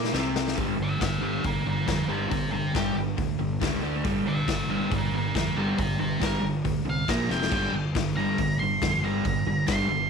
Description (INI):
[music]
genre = garage rock duo or trio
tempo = 138 BPM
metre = 4/4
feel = straight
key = G minor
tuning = A4 = 444 Hz
[part]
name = crunchy overdriven guitar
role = riff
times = 0.0-10.1 s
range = F2 to Bb4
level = -27 LUFS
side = right 1 dB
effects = spring reverb
[part]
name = fuzz fingered electric bass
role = bass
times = 0.0-10.1 s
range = F1 to Bb2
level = -33 LUFS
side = right 2 dB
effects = overdrive
[part]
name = raw garage drum kit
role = drums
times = 0.0-9.8 s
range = crash cymbal, hi-hat, kick drum, snare drum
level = -31 LUFS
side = left 3 dB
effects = none
[part]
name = octave-fuzz lead guitar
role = melody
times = 0.8-10.1 s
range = F4 to C6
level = -30 LUFS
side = right 2 dB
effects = distortion
[sound]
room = small room ambience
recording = 1960s-style stereo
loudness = -24 LUFS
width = side -6 dB against mid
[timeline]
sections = 0.6-10.1 A section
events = drum fill 0.0-0.6, 7.3; lead electric guitar solo 0.6-10.1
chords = 0.0 C5; 0.6 G5; 3.8 D5; 4.0 G5; 7.1 Bb5; 7.3 F5; 7.5 Gm